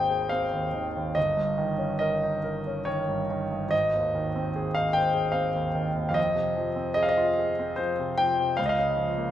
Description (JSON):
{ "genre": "classical, romantic nocturne for solo piano", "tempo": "68-76 BPM", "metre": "3/4", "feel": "rubato", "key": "Ab major", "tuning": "A4 = 441 Hz", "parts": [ { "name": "clear concert grand piano", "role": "solo", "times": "0.0-9.3 s", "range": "G1 to G5", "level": "-24 LUFS", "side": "equal", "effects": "none" } ], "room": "moderate recital hall reverb, RT60 1.6 s", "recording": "minimal, uncompressed stereo recording", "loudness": "-24 LUFS", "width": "side -11 dB against mid", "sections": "0.0-9.3 A section", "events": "none", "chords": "0.0 Ab; 1.2 Eb7/G; 3.7 Ab; 6.2 Fm7; 8.6 Bbm/Db" }